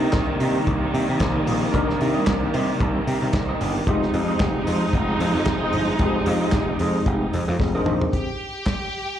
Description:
disco; 113 BPM; 4/4; swing 56% on 16ths; A4 = 441 Hz
electric guitar through a small old amp; accompaniment; 0.0-8.1 s; G4 to Eb5; -31 LUFS; right 2 dB; lush chorus, plate reverb, slapback echo
tine electric piano; accompaniment; 0.0-8.3 s; G3 to C5; -28 LUFS; left 5 dB; medium stereo tremolo, plate reverb, slapback echo
rich studio string section; sustained chords; 0.0-8.1 s; C3 to Eb4; -24 LUFS; right 2 dB; plate reverb
overdriven picked electric bass; bass; 0.0-8.0 s; F1 to C3; -24 LUFS; equal
warm soul drum kit; drums; 0.1-8.8 s; handclaps, hi-hat, kick drum, snare drum, toms; -26 LUFS; equal
bright studio string section; second line; 8.1-9.2 s; G4 to G5; -28 LUFS; equal; plate reverb
light reverb; live gig heard through the venue's PA, club reverb; -19 LUFS; side -10 dB against mid
0.0-8.1 A section; 8.1-9.2 B section
drum fill 7.6-8.1
0.0 Cm7; 3.9 Fm7; 8.1 Fsus2 (rootless)
0.14 0.67 1.20 | 1.74 2.27 2.80 3.33 | 3.87 4.40 4.93 5.46 | 6.00 6.53 7.06 7.60 | 8.13 8.66

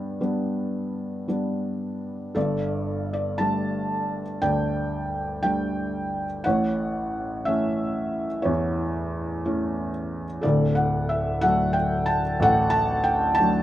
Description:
classical, lyrical solo piano; 60 BPM; 4/4; rubato; G major; A4 = 441 Hz
felt-muted upright piano; solo; 0.0-13.6 s; D1 to A5; -22 LUFS; equal
light reverb; close, detailed microphones; -23 LUFS; side -13 dB against mid
0.0-2.4 A section; 2.4-13.6 A section
0.0 G; 2.4 Gsus2; 6.5 A; 10.4 D
0.22 1.29 | 2.36 3.39 4.42 5.44 | 6.45 7.46 8.46 9.45 | 10.44 11.42 12.40 13.38

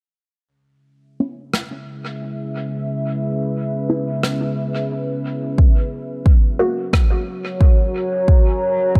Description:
ambient dub; 89 BPM; 4/4; straight; C# dorian; A4 = 439 Hz
deep dark ambient pad; sustained chords; 1.7-9.0 s; C#4 to A#5; -25 LUFS; equal; chorus, built-in reverb, vintage 12-bit sampler grit
filtered dub chord stab; stabs; 1.2-6.7 s; G#3 to F#4; -25 LUFS; equal; phaser, cassette tape, dub echo
rim click; drums; 1.5-7.1 s; -28 LUFS; equal; dub echo
electronic kick drum; drums; 5.6-9.0 s; -15 LUFS; equal; overdrive
light reverb, small room reverb; -19 LUFS; mono
0.2-9.0 A section
filter sweep on ambient pad 0.2-9.0; filter sweep on synth stab 0.2-9.0
0.2 C#m7; 5.6 F#add9
| 0.19 0.86 1.54 2.21 | 2.89 3.56 4.24 4.91 | 5.58 6.26 6.93 7.61 | 8.28 8.95

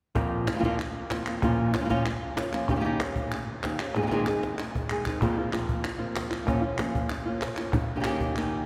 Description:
flamenco; 190 BPM; 4/4; straight; A4 = 437 Hz
flamenco guitar; melody; 0.1-8.7 s; F2 to Ab4; -30 LUFS; equal
cajon; percussion; 0.2-8.7 s; -35 LUFS; equal
palmas hand claps; percussion; 0.2-8.5 s; -38 LUFS; equal
wet cathedral reverb, RT60 4.5 s; recorded in a church or concert hall; -28 LUFS; mono
0.2-8.7 A section
drum fill 4.0-5.2
0.2 Fsus4; 1.4 Bbm; 2.7 Eb7; 4.0 Ab; 5.2 Fsus4; 6.5 Bbm; 7.7 Eb7
| 0.16 0.47 0.79 1.11 | 1.42 1.74 2.06 2.37 | 2.69 3.00 3.32 3.63 | 3.95 4.27 4.58 4.90 | 5.21 5.53 5.84 6.16 | 6.47 6.79 7.10 7.41 | 7.73 8.04 8.36

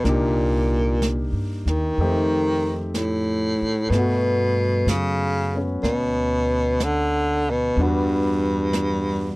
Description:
jazz ballad; 62 BPM; 4/4; swing 69% on 8ths; A4 = 440 Hz
clear baritone saxophone; melody; 0.0-9.4 s; G2 to Eb3; -22 LUFS; equal
clear baby grand piano; accompaniment; 0.0-9.4 s; G3 to G4; -27 LUFS; left 1 dB
upright bass; bass; 0.0-9.4 s; C2 to G2; -25 LUFS; equal
jazz brush drum kit; drums; 0.0-9.4 s; brushed snare drum, hi-hat, snare drum; -31 LUFS; right 1 dB
light reverb; dry, close 1970s-style studio recording; -19 LUFS; side -22 dB against mid
0.0-9.4 A section
0.0 Cm7; 2.0 F9; 3.9 Gmaj9; 7.8 Em9
| 0.04 1.01 1.98 2.94 | 3.91 4.87 5.84 6.80 | 7.77 8.74

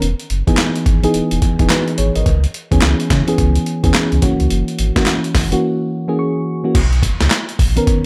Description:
R&B, new jack swing; 107 BPM; 4/4; swing 62% on 16ths; B major; A4 = 441 Hz
mellow FM electric piano; accompaniment; 0.0-8.1 s; D#3 to C#6; -20 LUFS; equal; chorus
sub bass with octave; bass; 0.0-7.8 s; E1 to C#3; -19 LUFS; equal
breakbeat sampler-style drum kit; drums; 0.0-8.0 s; crash cymbal, handclaps, hi-hat, kick drum, snare drum; -19 LUFS; equal
little or no reverb; -16 LUFS; mono
0.0-6.7 A section; 6.7-8.1 B section
break 5.6-6.7; FM electric piano fill 5.9-6.7
0.0 Emaj7; 2.3 C#m7; 4.2 F#7; 6.7 Bmaj9
| 0.02 0.58 1.14 1.70 | 2.26 2.82 3.38 3.94 | 4.50 5.07 5.63 6.19 | 6.75 7.31 7.87

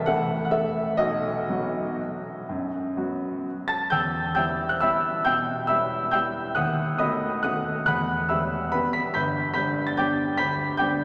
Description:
classical, piano waltz; 116-154 BPM; 3/4; rubato; E minor; A4 = 439 Hz
warm grand piano; solo; 0.0-11.0 s; G1 to B6; -25 LUFS; equal
wet cathedral reverb, RT60 5.1 s; -25 LUFS; mono
0.0-3.9 A section; 3.9-11.0 B section
0.0 A5; 1.0 B; 3.9 Em; 6.6 B7/D#; 7.9 Em; 9.1 G
0.07 0.52 | 0.99 1.48 1.99 | 2.48 2.96 3.45 | 3.92 4.36 4.82 | 5.25 5.68 6.13 | 6.57 7.00 7.45 | 7.88 8.31 8.73 | 9.15 9.55 9.97 | 10.39 10.79

